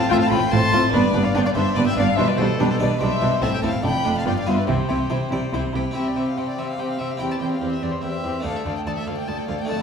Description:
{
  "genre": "classical, baroque-style concerto movement with solo episodes",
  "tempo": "144 BPM",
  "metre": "3/4",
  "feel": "straight",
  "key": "C major",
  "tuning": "A4 = 440 Hz",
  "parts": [
    { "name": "warm chamber violin section", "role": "melody", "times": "0.0-9.8 s", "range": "B4 to C6", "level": "-28 LUFS", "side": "left 5 dB", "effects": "none" },
    { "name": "warm violin", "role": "melody", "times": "0.0-9.8 s", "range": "G4 to A5", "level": "-27 LUFS", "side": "left 1 dB", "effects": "none" },
    { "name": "harpsichord", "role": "accompaniment", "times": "0.0-9.8 s", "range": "D2 to E5", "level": "-29 LUFS", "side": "equal", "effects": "none" },
    { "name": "warm chamber violin section", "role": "second line", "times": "0.1-9.8 s", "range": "C4 to A4", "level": "-28 LUFS", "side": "left 4 dB", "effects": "none" },
    { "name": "dark chamber viola section", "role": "accompaniment", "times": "0.1-9.8 s", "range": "G3 to C4", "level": "-26 LUFS", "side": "right 1 dB", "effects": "none" },
    { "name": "rich chamber cello section", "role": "bass", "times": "0.1-9.8 s", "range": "D2 to C3", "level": "-26 LUFS", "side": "right 2 dB", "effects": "none" },
    { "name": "rich chamber double bass section", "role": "bass", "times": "0.1-5.8 s", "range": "F1 to C2", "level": "-26 LUFS", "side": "right 2 dB", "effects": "none" }
  ],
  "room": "wet recital hall reverb, RT60 1.4 s",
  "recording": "heard from further back in the room",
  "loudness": "-19 LUFS",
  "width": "side -6 dB against mid",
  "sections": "0.0-6.0 A section; 6.0-9.8 B section",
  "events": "none",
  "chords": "0.0 F/A; 0.9 G; 2.2 G/B; 3.4 A5; 3.8 Dm/F (rootless); 4.3 G7; 4.7 C; 7.2 C/E; 8.4 D5"
}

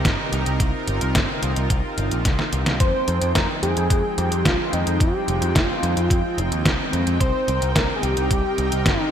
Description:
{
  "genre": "synthwave",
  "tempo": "109 BPM",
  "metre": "4/4",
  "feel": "straight",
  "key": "F minor",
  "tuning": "A4 = 440 Hz",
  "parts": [
    { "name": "soft supersaw", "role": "sustained chords", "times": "0.0-9.1 s", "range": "C3 to G5", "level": "-26 LUFS", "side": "right 2 dB", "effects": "lush chorus, sidechain pumping" },
    { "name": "modern bright picked electric bass", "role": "bass", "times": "0.0-9.0 s", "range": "F1 to F2", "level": "-24 LUFS", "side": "equal", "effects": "sidechain pumping" },
    { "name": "electronic kick drum", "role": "drums", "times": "0.0-9.0 s", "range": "none", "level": "-22 LUFS", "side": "equal", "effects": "overdrive" },
    { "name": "detuned 8-bit digital drum machine", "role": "drums", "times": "0.1-9.0 s", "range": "hi-hat, snare drum", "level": "-24 LUFS", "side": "equal", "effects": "overdrive, gated reverb" },
    { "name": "wide unison lead", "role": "melody", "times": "2.8-9.1 s", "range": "Eb4 to C5", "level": "-24 LUFS", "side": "equal", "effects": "digital delay" }
  ],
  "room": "light reverb",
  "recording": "bright 1980s-style digital production",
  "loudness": "-18 LUFS",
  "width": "side -9 dB against mid",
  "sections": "0.0-9.1 A section",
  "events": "drum fill 2.3-2.8",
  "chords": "0.0 Cm7; 2.8 Fm7; 7.2 Cm7"
}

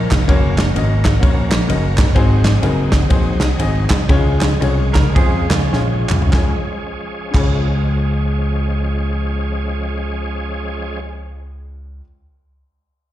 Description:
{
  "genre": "uptempo gospel",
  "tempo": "96-128 BPM",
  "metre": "4/4",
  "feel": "swing 62% on 8ths",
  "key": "Db major",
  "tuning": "A4 = 440 Hz",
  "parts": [
    { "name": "warm upright piano", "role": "accompaniment", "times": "0.0-12.0 s", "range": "Db2 to Eb5", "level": "-23 LUFS", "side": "left 4 dB", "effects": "slapback echo" },
    { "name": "bright tonewheel organ", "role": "sustained chords", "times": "0.0-11.0 s", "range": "F3 to Bb4", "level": "-26 LUFS", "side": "right 2 dB", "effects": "slow rotary speaker, overdrive, chorus vibrato" },
    { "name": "vintage slap bass", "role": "bass", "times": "0.0-12.0 s", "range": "F1 to F2", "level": "-18 LUFS", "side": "equal", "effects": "none" },
    { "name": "natural country drum kit", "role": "drums", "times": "0.1-7.5 s", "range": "crash cymbal, kick drum, ride cymbal, snare drum, toms", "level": "-16 LUFS", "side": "equal", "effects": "none" },
    { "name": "group handclap", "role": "percussion", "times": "0.1-7.5 s", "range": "none", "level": "-27 LUFS", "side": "right 4 dB", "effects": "none" },
    { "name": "clean electric guitar", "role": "second line", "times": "4.9-6.3 s", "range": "Db4 to Bb4", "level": "-24 LUFS", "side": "right 7 dB", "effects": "slapback echo" }
  ],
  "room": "studio reverb",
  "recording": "live gig heard through the venue's PA, recital hall reverb",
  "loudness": "-14 LUFS",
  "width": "side -13 dB against mid",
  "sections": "0.0-6.3 A section; 6.3-11.3 B section",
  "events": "slowing down 2.2-6.3; drum fill 5.7-6.3",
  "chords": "0.3 Gb; 2.2 Ab7; 4.1 Db"
}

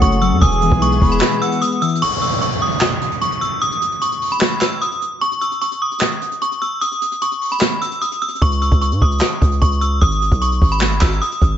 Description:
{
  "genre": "hip hop, trap",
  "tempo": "150 BPM",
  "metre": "4/4",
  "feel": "half-time",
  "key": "C# minor",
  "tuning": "A4 = 440 Hz",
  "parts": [
    { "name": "metallic FM bell", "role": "melody", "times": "0.0-11.4 s", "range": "B5 to E6", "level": "-19 LUFS", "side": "equal", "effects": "chorus, low-pass filter, ping-pong delay" },
    { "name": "breathy mellow concert flute", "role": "second line", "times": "0.0-1.6 s", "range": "F#5 to B5", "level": "-25 LUFS", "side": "right 6 dB", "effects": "ping-pong delay" },
    { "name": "mellow electric guitar", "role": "accompaniment", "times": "0.0-2.0 s", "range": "B2 to C#5", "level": "-20 LUFS", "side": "left 7 dB", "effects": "spring reverb, low-pass filter" },
    { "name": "warm analog pad", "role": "sustained chords", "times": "0.0-2.0 s", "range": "E3 to A4", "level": "-24 LUFS", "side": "right 1 dB", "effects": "chorus" },
    { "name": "hard-hitting 808-style bass", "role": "bass", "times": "0.0-1.2, 8.4-11.6 s", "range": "E1 to G#2", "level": "-18 LUFS", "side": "equal", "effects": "none" },
    { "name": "jazz brush drum kit", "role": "drums", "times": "0.0-11.5 s", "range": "handclaps, hi-hat, kick drum, snare drum", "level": "-18 LUFS", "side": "equal", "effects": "none" },
    { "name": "downlifter", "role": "sound effects", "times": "2.0-5.2 s", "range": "none", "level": "-24 LUFS", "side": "right 2 dB", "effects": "none" }
  ],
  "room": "studio ambience",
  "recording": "nothing above 7.9 kHz",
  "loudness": "-15 LUFS",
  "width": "side -10 dB against mid",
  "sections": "0.0-2.0 A section; 2.0-11.6 B section",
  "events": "break 1.2-2.0, 2.0-8.4",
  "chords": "0.4 E; 2.0 N.C.; 8.4 C#5; 10.0 G#m"
}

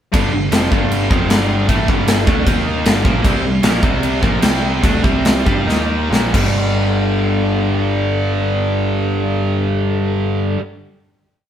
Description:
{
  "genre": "hard rock",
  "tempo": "130-154 BPM",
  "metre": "4/4",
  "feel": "straight",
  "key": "G minor",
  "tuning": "A4 = 440 Hz",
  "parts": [
    { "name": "tonewheel organ", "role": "sustained chords", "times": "0.1-10.6 s", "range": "G3 to F5", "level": "-31 LUFS", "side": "equal", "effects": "none" },
    { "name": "overdriven electric guitar", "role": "riff", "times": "0.1-10.6 s", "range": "F2 to G4", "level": "-21 LUFS", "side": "left 5 dB", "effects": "none" },
    { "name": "tight distorted guitar", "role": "riff", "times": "0.1-10.6 s", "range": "F2 to G4", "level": "-20 LUFS", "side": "right 6 dB", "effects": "distortion" },
    { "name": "modern bright picked electric bass", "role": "bass", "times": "0.1-10.5 s", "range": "F1 to G2", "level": "-20 LUFS", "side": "equal", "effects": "none" },
    { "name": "big rock drum kit", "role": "drums", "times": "0.1-6.4 s", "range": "crash cymbal, kick drum, snare drum", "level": "-16 LUFS", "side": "equal", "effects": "none" }
  ],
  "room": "moderate studio reverb, RT60 0.9 s",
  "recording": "band playing live in one room",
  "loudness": "-14 LUFS",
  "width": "side -10 dB against mid",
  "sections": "0.1-6.6 riff; 6.6-10.2 final hit",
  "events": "slowing down 3.2-6.6; drum fill 5.7-6.6",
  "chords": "0.1 G5; 2.5 Eb5; 2.9 Gm; 3.2 C5; 5.7 Eb5; 6.1 C5; 6.3 G5"
}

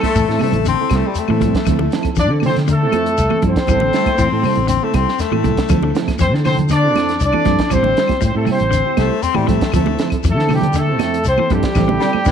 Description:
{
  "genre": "afrobeat",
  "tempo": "119 BPM",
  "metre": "4/4",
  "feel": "straight",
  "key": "D minor",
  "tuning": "A4 = 440 Hz",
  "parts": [
    { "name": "mellow horn section", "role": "melody", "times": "0.0-12.3 s", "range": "G3 to D5", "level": "-18 LUFS", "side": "left 1 dB", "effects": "none" },
    { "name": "breathy baritone saxophone", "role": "second line", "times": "0.0-12.3 s", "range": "E3 to C4", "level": "-21 LUFS", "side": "left 10 dB", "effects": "none" },
    { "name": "mellow electric guitar", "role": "stabs", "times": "0.0-12.2 s", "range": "F3 to A4", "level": "-22 LUFS", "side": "right 9 dB", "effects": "ensemble chorus, slapback echo" },
    { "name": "compact cocktail drum kit", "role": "drums", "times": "0.0-12.3 s", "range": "hi-hat, kick drum, snare drum", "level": "-22 LUFS", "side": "right 1 dB", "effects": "none" },
    { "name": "claves", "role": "percussion", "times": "0.0-12.3 s", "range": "none", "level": "-35 LUFS", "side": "left 12 dB", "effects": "none" },
    { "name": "congas", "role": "percussion", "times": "0.0-12.3 s", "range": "none", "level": "-24 LUFS", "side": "right 11 dB", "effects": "none" },
    { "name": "clean electric guitar", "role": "arpeggios", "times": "0.2-12.3 s", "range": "C3 to G3", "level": "-24 LUFS", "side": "left 9 dB", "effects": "slapback echo" },
    { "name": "fingered electric bass", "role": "bass", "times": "0.2-12.3 s", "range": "A1 to D3", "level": "-19 LUFS", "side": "equal", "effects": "none" },
    { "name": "shekere", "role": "percussion", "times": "0.2-12.3 s", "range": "none", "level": "-25 LUFS", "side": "left 3 dB", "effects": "none" }
  ],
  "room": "moderate echo chamber reverb, RT60 2.1 s",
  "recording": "1960s-style stereo with parts hard left and right",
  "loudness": "-14 LUFS",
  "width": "side -8 dB against mid",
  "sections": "0.0-12.3 A section",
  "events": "drum fill 11.8-12.3",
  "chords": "0.0 Am7; 1.7 Dm9; 3.7 Am7; 5.7 Dm9; 7.7 Am7; 9.7 Dm9; 11.8 Am7"
}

